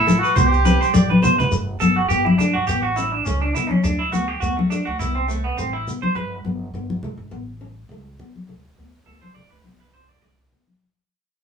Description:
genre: highlife guitar band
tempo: 103 BPM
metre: 4/4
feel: swing 55% on 16ths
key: unclear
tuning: A4 = 440 Hz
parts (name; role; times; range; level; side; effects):
- warm trumpet; melody; 0.0-1.2 s; E4 to G4; -21 LUFS; equal; none
- clean electric guitar; arpeggios; 0.0-10.4 s; A3 to D5; -21 LUFS; right 4 dB; none
- upright bass; bass; 0.0-10.5 s; G1 to G2; -26 LUFS; right 1 dB; none
- nylon-string guitar; accompaniment; 0.1-10.7 s; A3 to C#4; -29 LUFS; left 4 dB; none
- congas; percussion; 0.1-10.8 s; none; -20 LUFS; left 2 dB; none
- shekere; percussion; 0.1-6.0 s; none; -27 LUFS; equal; none
room: moderate studio reverb, RT60 0.6 s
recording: band playing live in one room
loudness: -17 LUFS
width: side -7 dB against mid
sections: 0.0-1.5 A section; 1.5-10.8 B section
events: drum fill 0.9-1.5; fade-out 1.5-10.8; clean electric guitar solo 1.5-10.8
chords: 0.4 Csus2; 1.5 Gadd9; 2.7 A; 3.8 D5; 5.0 Amadd9; 6.2 Gadd9; 7.3 A; 8.5 D5; 9.6 Amadd9/C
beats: 0.36 0.94 | 1.52 2.10 2.68 3.25 | 3.83 4.42 5.00 5.58 | 6.16 6.74 7.32 7.90 | 8.48 9.06 9.64 10.22

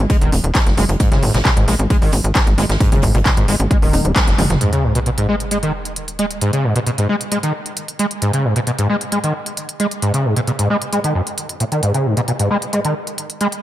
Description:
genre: driving peak-time techno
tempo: 133 BPM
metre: 4/4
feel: straight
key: G# minor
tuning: A4 = 435 Hz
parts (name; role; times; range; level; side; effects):
- tight sequencer bass; bass; 0.0-4.6 s; D#1 to A#1; -18 LUFS; equal; sidechain pumping
- overdriven acid bass; riff; 0.1-13.5 s; F#2 to G#3; -18 LUFS; equal; distortion, ensemble chorus, sidechain pumping, tape echo
- electronic kick drum; drums; 0.1-4.3 s; none; -15 LUFS; equal; overdrive
- soft-mallet drum kit; drums; 0.1-4.6 s; hi-hat, snare drum; -29 LUFS; right 1 dB; sidechain pumping on hats, high-pass filter on hats, high-pass filter on snare, high-pass filter on room
- techno drum kit; drums; 0.1-13.6 s; handclaps, hi-hat, toms; -22 LUFS; equal; overdrive
- sub drop; sound effects; 4.6-6.4 s; none; -24 LUFS; equal; none
room: light reverb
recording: none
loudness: -15 LUFS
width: side -13 dB against mid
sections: 0.0-4.6 A section; 4.6-13.6 B section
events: drum fill 3.9-4.6; band accent 4.2; impact 4.6-6.4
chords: 0.0 G#5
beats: 0.10 0.55 | 1.00 1.45 1.90 2.35 | 2.81 3.26 3.71 4.16 | 4.61 5.06 5.51 5.96 | 6.42 6.87 7.32 7.77 | 8.22 8.67 9.12 9.57 | 10.02 10.47 10.93 11.38 | 11.83 12.28 12.73 13.18

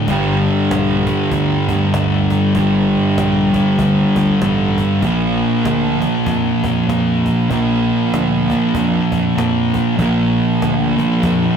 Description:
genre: stoner and doom metal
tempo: 97 BPM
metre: 4/4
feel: swing 60% on 8ths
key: unclear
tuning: A4 = 440 Hz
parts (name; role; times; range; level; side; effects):
- thick fuzz guitar; riff; 0.0-11.6 s; G2 to Bb3; -19 LUFS; left 9 dB; distortion
- thick fuzz guitar; riff; 0.0-11.6 s; G2 to Bb3; -16 LUFS; right 4 dB; distortion
- growling fingered electric bass; bass; 0.1-11.5 s; G1 to F2; -24 LUFS; left 1 dB; overdrive, tube saturation
- cajon; drums; 0.1-11.4 s; none; -27 LUFS; left 1 dB; none
room: moderate stone room reverb, RT60 1.1 s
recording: rough rehearsal-room recording, warm saturation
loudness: -13 LUFS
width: side -7 dB against mid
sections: 0.0-11.6 A section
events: none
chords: 0.1 Gm; 5.0 Bb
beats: | 0.08 0.70 1.31 1.93 | 2.55 3.17 3.79 4.41 | 5.03 5.65 6.27 6.89 | 7.51 8.13 8.75 9.37 | 9.99 10.61 11.23

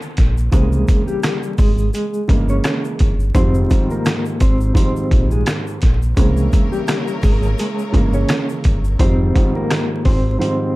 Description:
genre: hip hop, boom-bap hip-hop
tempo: 85 BPM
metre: 4/4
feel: swing 57% on 16ths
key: F minor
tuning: A4 = 440 Hz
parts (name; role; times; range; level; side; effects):
- egg shaker; percussion; 0.0-9.0 s; none; -45 LUFS; left 6 dB; none
- deep dub fingered electric bass; bass; 0.2-10.4 s; F1 to C2; -17 LUFS; equal; none
- trip hop sampler-style drum kit; drums; 0.2-10.6 s; hi-hat, kick drum, rim click, snare drum; -17 LUFS; equal; none
- mellow electric guitar; melody; 0.5-10.8 s; G3 to Db5; -23 LUFS; left 1 dB; tremolo, ping-pong delay
- dark baby grand piano; accompaniment; 0.5-10.8 s; Ab2 to C4; -22 LUFS; right 2 dB; cassette tape
- warm studio string section; sustained chords; 6.2-9.0 s; Db3 to Db5; -30 LUFS; left 1 dB; none
room: studio ambience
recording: dark, warm production, vinyl crackle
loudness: -14 LUFS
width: side -19 dB against mid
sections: 0.0-10.8 A section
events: break 0.0-0.5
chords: 0.0 N.C.; 0.5 C7b9b13; 3.3 Fm9; 6.2 C7b9b13; 9.0 Fm9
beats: | 0.52 1.23 1.94 2.64 | 3.35 4.05 4.76 5.46 | 6.17 6.88 7.58 8.29 | 8.99 9.70 10.41

